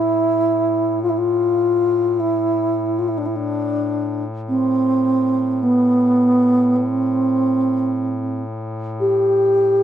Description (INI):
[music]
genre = caucasian folk, Caucasian lament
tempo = 53 BPM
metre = 4/4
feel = rubato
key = A minor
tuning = A4 = 441 Hz
[part]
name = mellow wooden-headed alto flute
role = melody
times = 0.0-9.8 s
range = B3 to G4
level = -16 LUFS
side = equal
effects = none
[part]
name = warm duduk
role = drone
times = 0.0-9.8 s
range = A2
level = -28 LUFS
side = left 2 dB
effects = none
[sound]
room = moderate booth ambience, RT60 0.2 s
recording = dry, close 1970s-style studio recording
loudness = -16 LUFS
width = side -10 dB against mid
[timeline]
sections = 0.0-9.8 A section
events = none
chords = none